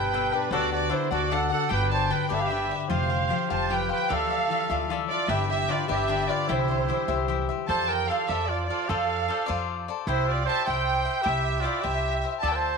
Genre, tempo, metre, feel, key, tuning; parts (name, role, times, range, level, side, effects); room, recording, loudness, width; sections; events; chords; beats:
mexican folk, mariachi; 100 BPM (dotted quarters); 6/8; straight; C major, F major from 7.7 s; A4 = 440 Hz
rich studio violin section; melody; 0.0-12.8 s; B4 to A5; -28 LUFS; right 2 dB
bright trumpet; second line; 0.0-12.8 s; D4 to D5; -30 LUFS; right 11 dB
cavaquinho; accompaniment; 0.0-12.8 s; D4 to G5; -30 LUFS; left 12 dB
concert harp; arpeggios; 0.0-9.4 s; B2 to F5; -32 LUFS; left 10 dB
upright bass; bass; 0.0-12.8 s; F1 to F2; -31 LUFS; equal
moderate echo chamber reverb, RT60 2.2 s; 1960s-style stereo with parts hard left and right; -23 LUFS; side -5 dB against mid
0.0-7.7 A section; 7.7-12.8 B section
0.0 Gadd9; 0.5 D; 1.7 G; 2.9 Fsus2; 4.1 Dmadd9; 5.3 G; 6.5 C; 7.7 F6; 10.1 C
| 0.51 1.11 | 1.71 2.31 | 2.91 3.51 | 4.11 4.70 | 5.30 5.89 | 6.48 7.09 | 7.69 8.29 | 8.89 9.48 | 10.06 10.65 | 11.24 11.84 | 12.44